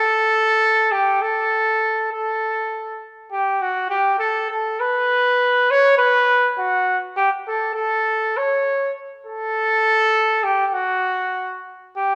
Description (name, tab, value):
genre	mexican folk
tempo	101 BPM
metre	4/4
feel	straight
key	unclear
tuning	A4 = 440 Hz
part	mellow trumpet	solo	0.0-12.2 s	F#4 to C#5	-19 LUFS	equal	none
room	moderate recital hall reverb, RT60 1.7 s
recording	none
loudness	-19 LUFS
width	mono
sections	0.0-11.9 A section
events	none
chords	none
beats	| 0.02 0.61 1.21 1.81 | 2.41 3.01 3.60 4.20 | 4.79 5.39 5.98 6.57 | 7.16 7.75 8.35 8.94 | 9.54 10.13 10.73 11.33 | 11.94